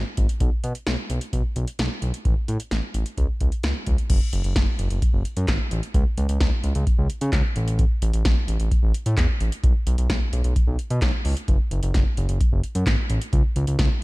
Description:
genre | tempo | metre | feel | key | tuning
synth-pop | 130 BPM | 4/4 | straight | unclear | A4 = 439 Hz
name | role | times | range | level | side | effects
smooth synth bass | bass | 0.0-13.9 s | F#1 to C#3 | -23 LUFS | equal | none
electro analog drum machine | drums | 0.2-13.9 s | crash cymbal, handclaps, hi-hat, kick drum, snare drum | -22 LUFS | equal | none
room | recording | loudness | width
little or no reverb | dark, warm production | -20 LUFS | side -22 dB against mid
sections
0.0-4.1 A section; 4.1-14.0 B section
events
none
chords
none

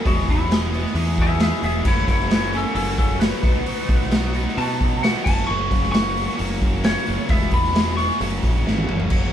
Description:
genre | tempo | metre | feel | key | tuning
classic rock | 132 BPM | 4/4 | straight | F# mixolydian | A4 = 442 Hz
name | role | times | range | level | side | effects
lightly driven lead guitar | melody | 0.0-8.2 s | C#4 to C#6 | -24 LUFS | left 1 dB | none
distorted electric guitar | riff | 0.0-9.3 s | E2 to G#4 | -26 LUFS | equal | overdrive
growling picked electric bass | bass | 0.1-9.3 s | E1 to B2 | -24 LUFS | equal | overdrive
raw garage drum kit | drums | 0.1-9.2 s | crash cymbal, hi-hat, kick drum, snare drum, toms | -21 LUFS | equal | none
room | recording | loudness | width
moderate studio reverb, RT60 0.6 s | band playing live in one room | -18 LUFS | side -10 dB against mid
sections
0.0-9.1 A section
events
lead electric guitar solo 0.0-9.1; drum fill 8.7-9.1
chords
0.0 E; 1.9 F#; 3.4 B; 5.3 F#; 7.3 E; 8.2 F#add9

